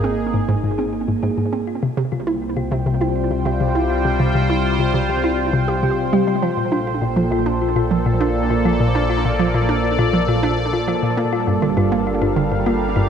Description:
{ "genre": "ambient, sequencer-driven space music", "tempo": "101 BPM", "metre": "4/4", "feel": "straight", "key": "unclear", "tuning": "A4 = 439 Hz", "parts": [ { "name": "sweeping resonant pad", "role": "sustained chords", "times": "0.0-13.1 s", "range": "Bb2 to G5", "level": "-20 LUFS", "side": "right 1 dB", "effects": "chorus, shimmer reverb" }, { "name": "thumb-piano-like synth pluck", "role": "arpeggios", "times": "0.0-13.1 s", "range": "F4 to C6", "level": "-27 LUFS", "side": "moving between left 9 dB and equal", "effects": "chorus, auto-pan, vintage 12-bit sampler grit, analog delay, shimmer reverb" }, { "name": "hollow square pluck", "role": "riff", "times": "0.0-13.0 s", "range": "G2 to G4", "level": "-20 LUFS", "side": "equal", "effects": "chorus, analog delay" }, { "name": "round analog bass", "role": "bass", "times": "0.0-13.1 s", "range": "G1 to C2", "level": "-27 LUFS", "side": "equal", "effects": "none" } ], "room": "moderate plate reverb, RT60 3.0 s", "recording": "dark, warm production", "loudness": "-16 LUFS", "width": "side -8 dB against mid", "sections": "0.0-13.1 A section", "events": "fade-in on synth arpeggio sound 0.0-13.1", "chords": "0.0 Absus2; 1.7 Csus4; 6.4 Bbmaj7; 11.2 Gm7" }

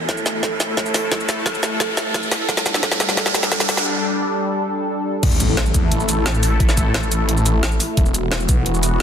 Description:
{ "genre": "dark technical drum and bass", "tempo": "175 BPM", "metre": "4/4", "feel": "straight", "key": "unclear", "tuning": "A4 = 440 Hz", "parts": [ { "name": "sweeping resonant pad", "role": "sustained chords", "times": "0.0-9.0 s", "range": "E3 to A4", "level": "-23 LUFS", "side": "left 1 dB", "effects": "chorus, sidechain pumping" }, { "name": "riser and impact", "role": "sound effects", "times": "0.0-6.6 s", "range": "none", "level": "-25 LUFS", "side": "right 1 dB", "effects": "none" }, { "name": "dark detuned synth bell", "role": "arpeggios", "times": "0.1-3.6 s", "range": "A4", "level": "-28 LUFS", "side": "right 2 dB", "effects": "chorus, phaser, sidechain pumping, ping-pong delay" }, { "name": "drum and bass drum kit", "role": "drums", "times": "0.1-9.0 s", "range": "crash cymbal, hi-hat, shaker, snare drum", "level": "-21 LUFS", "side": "equal", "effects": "overdrive" }, { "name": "electronic kick drum", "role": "drums", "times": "0.1-8.6 s", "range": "none", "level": "-19 LUFS", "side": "equal", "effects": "overdrive, high-pass filter on kick" }, { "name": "snarling distorted saw bass", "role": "bass", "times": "5.2-9.0 s", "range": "E1 to E2", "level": "-19 LUFS", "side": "equal", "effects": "distortion, overdrive, sidechain pumping" } ], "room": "moderate lush hall reverb, RT60 2.1 s", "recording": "dense, heavily limited modern master", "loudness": "-16 LUFS", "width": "side -8 dB against mid", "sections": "0.0-5.2 A section; 5.2-9.0 B section", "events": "build-up 0.0-5.2; drum fill 0.0-3.9; riser 0.0-3.9; break 3.9-5.2; drop 5.2-9.0; impact 5.2-6.6", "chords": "0.0 A5; 2.5 Gsus2; 5.2 A5; 8.0 Esus2" }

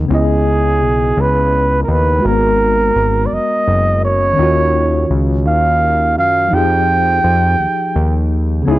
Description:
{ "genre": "R&B", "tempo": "56 BPM (dotted quarters)", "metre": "6/8", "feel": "straight", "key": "unclear", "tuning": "A4 = 439 Hz", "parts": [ { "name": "tine electric piano", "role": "accompaniment", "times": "0.0-8.8 s", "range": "Db3 to Eb5", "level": "-19 LUFS", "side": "left 2 dB", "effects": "overdrive, fast stereo tremolo" }, { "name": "fat analog bass", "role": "bass", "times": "0.0-8.8 s", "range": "Gb1 to Gb2", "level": "-16 LUFS", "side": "equal", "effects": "none" }, { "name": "warm flugelhorn", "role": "melody", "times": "0.1-8.8 s", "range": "Ab4 to G5", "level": "-15 LUFS", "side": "right 2 dB", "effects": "none" } ], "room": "little or no reverb", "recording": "dry, close 1970s-style studio recording", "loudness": "-12 LUFS", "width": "side -16 dB against mid", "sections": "0.0-8.8 A section", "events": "none", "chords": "0.1 Dbm9; 2.2 Abm9; 4.4 Ebm9; 6.5 Fm9" }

